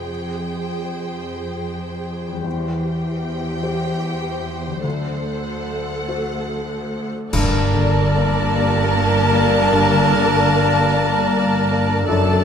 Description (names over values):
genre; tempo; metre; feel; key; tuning
cinematic, emotional film score for orchestra; 50 BPM (dotted quarters); 6/8; rubato; unclear; A4 = 439 Hz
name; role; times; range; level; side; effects
rich studio violin section; melody; 0.0-12.4 s; F#5 to A5; -28 LUFS; left 2 dB; none
warm studio violin section; second line; 0.0-12.4 s; C5 to D5; -29 LUFS; left 1 dB; none
felt-muted upright piano; accompaniment; 0.0-12.4 s; D2 to D5; -25 LUFS; left 2 dB; none
warm studio viola section; accompaniment; 0.0-12.4 s; G4 to Bb4; -26 LUFS; right 3 dB; none
concert harp; arpeggios; 0.0-12.4 s; E2 to D6; -28 LUFS; left 7 dB; none
rich studio cello section; bass; 0.0-12.4 s; D2 to G2; -26 LUFS; right 1 dB; none
cymbal swell, clash cymbals and concert bass drum; percussion; 4.8-8.9 s; none; -25 LUFS; equal; none
clear clarinet; second line; 7.3-12.4 s; D4; -27 LUFS; left 2 dB; none
mellow hollow concert flute; second line; 7.3-12.4 s; A5; -27 LUFS; left 3 dB; none
warm oboe; second line; 7.3-12.4 s; A4 to Bb4; -27 LUFS; right 3 dB; none
mellow French horn section; sustained chords; 7.3-12.4 s; Bb3 to Bb4; -26 LUFS; left 4 dB; none
clear studio double bass section; bass; 7.3-12.4 s; F#1 to G1; -22 LUFS; right 4 dB; none
room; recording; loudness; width
wet recital hall reverb, RT60 1.6 s; none; -17 LUFS; side -7 dB against mid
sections
0.0-7.3 A section; 7.3-12.4 B section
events
band accent 7.3-8.1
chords
0.0 Fmadd9; 2.5 C/E; 4.8 D7; 7.3 Gmadd9